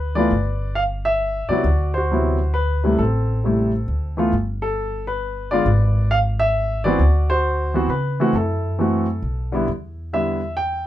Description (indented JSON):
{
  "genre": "jazz piano trio",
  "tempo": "134 BPM",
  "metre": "3/4",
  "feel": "swing 65% on 8ths",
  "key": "D mixolydian",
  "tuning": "A4 = 440 Hz",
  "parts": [
    { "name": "warm baby grand piano", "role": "melody", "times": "0.0-10.9 s", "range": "C3 to G5", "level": "-20 LUFS", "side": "equal", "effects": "none" },
    { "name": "upright bass", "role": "bass", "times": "0.0-10.9 s", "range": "G1 to C#3", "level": "-21 LUFS", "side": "equal", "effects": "none" }
  ],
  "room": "light reverb",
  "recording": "minimal, uncompressed stereo recording",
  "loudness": "-18 LUFS",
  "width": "side -13 dB against mid",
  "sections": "0.0-10.9 A section",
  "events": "none",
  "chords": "0.3 G6; 1.7 D13; 3.0 Am7; 3.9 Dsus2; 4.3 Gadd9; 5.7 G#dim; 7.0 D13; 8.3 F#m7b5; 9.2 G69/B; 9.7 Em7"
}